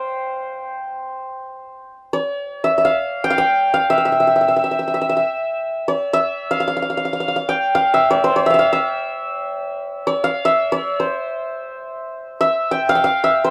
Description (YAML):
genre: Persian modal ensemble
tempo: free time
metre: none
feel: none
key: C dastgah chahargah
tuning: A4 = 440 Hz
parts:
  - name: santur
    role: solo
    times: 0.0-13.5 s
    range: C5 to G5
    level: -19 LUFS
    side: equal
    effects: none
room: light reverb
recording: dry, close 1970s-style studio recording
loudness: -19 LUFS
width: mono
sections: 0.0-1.9 A section; 1.9-13.5 A section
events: none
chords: none